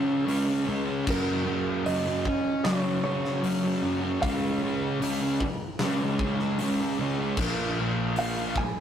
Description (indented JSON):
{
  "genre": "rock, shoegaze and dream pop",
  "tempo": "76 BPM",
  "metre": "4/4",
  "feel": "straight",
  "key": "Db major",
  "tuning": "A4 = 440 Hz",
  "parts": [
    { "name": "thick fuzz guitar", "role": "riff", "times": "0.0-8.6 s", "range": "Gb2 to Db4", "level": "-26 LUFS", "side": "equal", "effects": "distortion" },
    { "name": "fuzz fingered electric bass", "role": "bass", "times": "0.0-8.7 s", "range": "Bb1 to Gb3", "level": "-34 LUFS", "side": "equal", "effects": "overdrive" },
    { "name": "huge arena drum kit", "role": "drums", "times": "0.3-8.7 s", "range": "crash cymbal, hi-hat, kick drum, snare drum", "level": "-33 LUFS", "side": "left 1 dB", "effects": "none" },
    { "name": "direct-recorded clean electric guitar", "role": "melody", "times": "1.1-8.8 s", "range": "Bb4 to Ab5", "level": "-33 LUFS", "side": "right 3 dB", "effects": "none" }
  ],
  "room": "wet studio ambience, RT60 0.5 s",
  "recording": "rough rehearsal-room recording, tube saturation",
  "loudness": "-25 LUFS",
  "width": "side -9 dB against mid",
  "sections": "0.0-8.8 A section",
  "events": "none",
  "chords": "0.0 Db5; 1.1 Gb; 4.2 Db; 7.4 Bb5",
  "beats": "0.28 | 1.07 1.85 2.64 3.43 | 4.22 5.00 5.79 6.58 | 7.37 8.16"
}